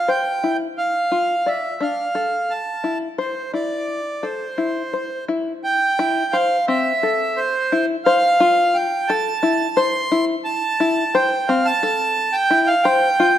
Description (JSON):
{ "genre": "contemporary instrumental, contemporary", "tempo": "174 BPM (eighths)", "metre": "7/8", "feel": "straight", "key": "F major", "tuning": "A4 = 440 Hz", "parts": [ { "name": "accordion", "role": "melody", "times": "0.0-13.4 s", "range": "C5 to C6", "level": "-18 LUFS", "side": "right 2 dB", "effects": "none" }, { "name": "open-back banjo", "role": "arpeggios", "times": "0.1-13.4 s", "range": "C4 to D5", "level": "-22 LUFS", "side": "left 4 dB", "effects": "none" } ], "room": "moderate concert hall reverb, RT60 1.8 s", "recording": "close, detailed microphones", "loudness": "-17 LUFS", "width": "side -11 dB against mid", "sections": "0.0-5.6 A section; 5.6-13.4 B section", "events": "none", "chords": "0.0 Fmaj7(no3); 0.8 Dmadd9; 3.2 Amadd11/E (rootless); 5.6 Fmaj7" }